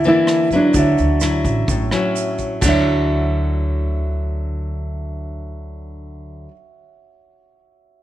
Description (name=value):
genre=bossa nova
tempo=128 BPM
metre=4/4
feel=straight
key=D major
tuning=A4 = 441 Hz
part: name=nylon-string guitar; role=melody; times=0.0-6.5 s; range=D4 to E4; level=-18 LUFS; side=equal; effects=none
part: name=nylon-string guitar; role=accompaniment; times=0.0-6.5 s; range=A2 to E4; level=-23 LUFS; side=left 3 dB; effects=none
part: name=warm concert grand piano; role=accompaniment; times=0.0-8.0 s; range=D4 to E5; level=-28 LUFS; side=right 7 dB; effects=none
part: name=upright bass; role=bass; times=0.0-6.4 s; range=A1 to D2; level=-21 LUFS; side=equal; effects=none
part: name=vintage brush drum kit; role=drums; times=0.0-2.7 s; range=crash cymbal, hi-hat, kick drum, rim click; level=-26 LUFS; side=equal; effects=none
part: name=tube shaker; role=percussion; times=0.0-2.7 s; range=none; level=-31 LUFS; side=right 11 dB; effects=none
room=light reverb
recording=none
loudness=-16 LUFS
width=side -13 dB against mid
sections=0.0-2.6 A section; 2.6-6.4 B section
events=none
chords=0.0 Gm6 (rootless); 0.7 Dmaj9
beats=0.28 | 0.75 1.22 1.69 2.16 | 2.63 3.10 3.57 4.04 | 4.51 4.98 5.45 5.92